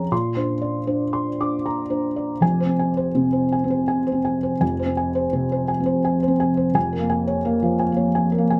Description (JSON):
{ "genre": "neoclassical minimalist piano", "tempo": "76-88 BPM", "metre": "3/4", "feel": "rubato", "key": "F minor", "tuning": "A4 = 440 Hz", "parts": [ { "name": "felt-muted upright piano", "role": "solo", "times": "0.0-8.6 s", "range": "F1 to D6", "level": "-22 LUFS", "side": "equal", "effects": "none" } ], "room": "light reverb", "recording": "dark, warm production", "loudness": "-22 LUFS", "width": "mono", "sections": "0.0-2.4 A section; 2.4-8.6 A section", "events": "none", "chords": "0.1 Bbadd9; 2.4 Fm; 6.8 Db6/F" }